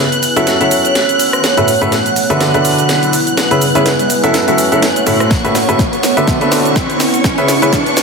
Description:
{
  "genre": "piano house",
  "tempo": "124 BPM",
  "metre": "4/4",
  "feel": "swing 57% on 16ths",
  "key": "unclear",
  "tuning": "A4 = 439 Hz",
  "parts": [
    { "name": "string machine, violins", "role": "sustained chords", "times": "0.0-8.0 s", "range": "C#6 to F#6", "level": "-19 LUFS", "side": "equal", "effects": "ensemble chorus, sidechain pumping" },
    { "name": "riser", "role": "sound effects", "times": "0.3-8.0 s", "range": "none", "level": "-22 LUFS", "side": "right 2 dB", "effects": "none" },
    { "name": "deep dark ambient pad", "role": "texture", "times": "0.0-8.0 s", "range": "E4 to F#5", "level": "-17 LUFS", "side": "right 1 dB", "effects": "chorus, built-in reverb, sidechain pumping" },
    { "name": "house drum kit", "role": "drums", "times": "0.1-8.0 s", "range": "hi-hat, rim click, shaker, snare drum", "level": "-17 LUFS", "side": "right 1 dB", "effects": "high-pass filter on snare, high-pass filter on hats, high-pass filter on perc, high-pass filter on room" },
    { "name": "clear upright piano", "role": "riff", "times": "0.4-7.7 s", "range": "A2 to E5", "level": "-14 LUFS", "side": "equal", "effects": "sidechain pumping, low-pass filter, ping-pong delay" },
    { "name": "electronic kick drum", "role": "drums", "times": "5.3-7.8 s", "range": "none", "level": "-17 LUFS", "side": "equal", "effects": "none" }
  ],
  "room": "moderate plate reverb, RT60 1.8 s",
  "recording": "dense, heavily limited modern master, high-pass filter",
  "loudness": "-10 LUFS",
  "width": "side -4 dB against mid",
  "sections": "0.0-8.0 A section",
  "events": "build-up 0.0-8.0; drum fill 0.0-8.0; riser 0.3-8.0",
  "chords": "0.2 F#m7; 1.4 A69; 2.2 D69; 3.1 C#m7; 4.1 F#m7; 5.3 A69; 6.0 D69; 7.0 C#m7"
}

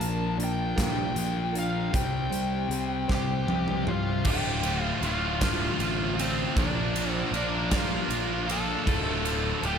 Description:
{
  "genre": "quiet-loud alternative rock",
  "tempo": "52 BPM (dotted quarters)",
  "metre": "6/8",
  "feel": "straight",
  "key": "D minor",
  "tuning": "A4 = 439 Hz",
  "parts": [
    { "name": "bluesy overdriven lead guitar", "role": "melody", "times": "0.0-9.8 s", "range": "C4 to A5", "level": "-32 LUFS", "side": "equal", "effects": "distortion" },
    { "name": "fingerpicked old ladder-braced acoustic guitar", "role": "arpeggios", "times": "0.0-4.2 s", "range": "Bb2 to C5", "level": "-36 LUFS", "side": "right 8 dB", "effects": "slapback echo, analog delay" },
    { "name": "thick fuzz guitar", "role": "riff", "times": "0.0-9.8 s", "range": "D2 to Bb4", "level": "-32 LUFS", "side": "left 9 dB", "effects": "distortion" },
    { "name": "overdriven picked electric bass", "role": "bass", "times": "0.0-9.8 s", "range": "D1 to C2", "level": "-32 LUFS", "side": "right 1 dB", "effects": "none" },
    { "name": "big rock drum kit", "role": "drums", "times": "0.0-9.8 s", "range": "crash cymbal, hi-hat, kick drum, ride cymbal, snare drum, toms", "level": "-30 LUFS", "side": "equal", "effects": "none" },
    { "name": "scooped high-gain guitar", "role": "riff", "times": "4.2-9.8 s", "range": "D2 to Bb4", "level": "-31 LUFS", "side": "right 10 dB", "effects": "distortion" }
  ],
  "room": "moderate lush hall reverb, RT60 2.7 s",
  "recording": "big arena sound",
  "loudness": "-25 LUFS",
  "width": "side -7 dB against mid",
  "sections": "0.0-4.3 A section; 4.3-9.8 B section",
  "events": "drum fill 3.1-4.3",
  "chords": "0.0 Bb; 1.9 C5; 4.3 Dm; 6.6 Bb; 8.9 Dm"
}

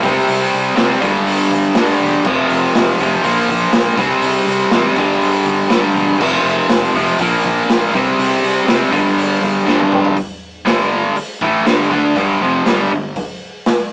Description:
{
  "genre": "hard rock",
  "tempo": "121 BPM",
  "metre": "4/4",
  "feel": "straight",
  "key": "G minor",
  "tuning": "A4 = 440 Hz",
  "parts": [
    { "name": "cranked stack guitar", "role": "riff", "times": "0.0-13.1 s", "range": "F2 to D4", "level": "-13 LUFS", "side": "equal", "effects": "overdrive" },
    { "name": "fuzz fingered electric bass", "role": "bass", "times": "0.0-13.1 s", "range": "E1 to D2", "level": "-25 LUFS", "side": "equal", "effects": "overdrive" },
    { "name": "raw garage drum kit", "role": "drums", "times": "0.0-13.8 s", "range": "crash cymbal, hi-hat, kick drum, snare drum, toms", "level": "-18 LUFS", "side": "equal", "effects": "none" }
  ],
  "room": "light reverb",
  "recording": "rough rehearsal-room recording, warm saturation, small speaker sound",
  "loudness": "-12 LUFS",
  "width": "side -29 dB against mid",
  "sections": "0.0-10.2 A section; 10.2-13.9 B section",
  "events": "drum fill 9.7-10.2",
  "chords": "0.0 C5; 1.0 G5; 2.3 F5; 3.2 Bb5; 4.0 C5; 5.0 G5; 6.2 F5; 7.2 Bb5; 7.9 C5; 8.9 G5"
}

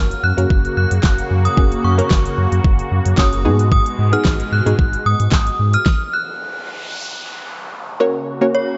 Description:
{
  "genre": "dance-pop",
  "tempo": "112 BPM",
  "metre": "4/4",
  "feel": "straight",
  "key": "F# major",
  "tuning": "A4 = 440 Hz",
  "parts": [
    { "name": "synth chime", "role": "melody", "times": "0.0-8.8 s", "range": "C#5 to F#6", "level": "-24 LUFS", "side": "equal", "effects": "ensemble chorus, digital delay" },
    { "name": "analog pluck", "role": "accompaniment", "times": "0.0-8.8 s", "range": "A#3 to C#5", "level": "-23 LUFS", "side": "equal", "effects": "chorus, sidechain pumping" },
    { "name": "filtered supersaw swell", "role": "sustained chords", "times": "0.0-8.8 s", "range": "B2 to F#4", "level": "-27 LUFS", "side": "equal", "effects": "phaser, sidechain pumping" },
    { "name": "sub bass with octave", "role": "bass", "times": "0.0-5.8 s", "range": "F#1 to G#2", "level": "-20 LUFS", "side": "equal", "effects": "sidechain pumping" },
    { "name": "pop drum kit", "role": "drums", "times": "0.1-6.0 s", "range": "handclaps, hi-hat, kick drum, snare drum", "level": "-18 LUFS", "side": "equal", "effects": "none" },
    { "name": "noise sweep", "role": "sound effects", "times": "6.1-8.0 s", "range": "none", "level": "-32 LUFS", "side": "equal", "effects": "none" }
  ],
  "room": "light reverb",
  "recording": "nothing above 7.9 kHz",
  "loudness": "-16 LUFS",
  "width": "mono",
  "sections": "0.0-8.0 A section",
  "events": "stop 5.9-8.0; noise sweep 6.1-8.0",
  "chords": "0.0 F#; 3.4 G#m7; 5.9 N.C.; 8.0 F#"
}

